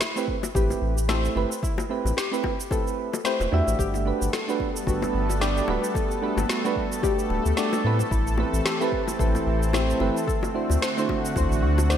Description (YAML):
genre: sunset chillout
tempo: 111 BPM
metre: 4/4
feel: swing 56% on 16ths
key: G major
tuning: A4 = 440 Hz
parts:
  - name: soft round pluck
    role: arpeggios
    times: 0.0-12.0 s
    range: E4 to C5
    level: -32 LUFS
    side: left 4 dB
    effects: chorus, analog delay
  - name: electronic snare drum and shaker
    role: drums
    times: 0.0-12.0 s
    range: none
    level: -31 LUFS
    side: right 1 dB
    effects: none
  - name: bongos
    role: percussion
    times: 0.0-11.9 s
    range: none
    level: -35 LUFS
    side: left 6 dB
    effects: none
  - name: soft electric-piano-like synth keys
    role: accompaniment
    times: 0.2-12.0 s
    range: A3 to E5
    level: -28 LUFS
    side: right 2 dB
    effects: chorus, auto-pan, vintage 12-bit sampler grit, analog delay
  - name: electronic kick drum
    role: drums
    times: 0.3-11.5 s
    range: none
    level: -29 LUFS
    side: equal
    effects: none
  - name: warm sub bass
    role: bass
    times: 0.5-12.0 s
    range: D1 to A2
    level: -24 LUFS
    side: equal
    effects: none
  - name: lush unison pad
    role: sustained chords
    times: 4.1-12.0 s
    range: D3 to A4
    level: -28 LUFS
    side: equal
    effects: chorus
room: moderate lush hall reverb, RT60 1.9 s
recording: dreamy mix soaked in reverb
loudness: -22 LUFS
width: side -9 dB against mid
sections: 0.0-12.0 A section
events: none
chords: 0.0 Am7; 3.8 Gmaj9; 7.8 Am7; 10.3 D7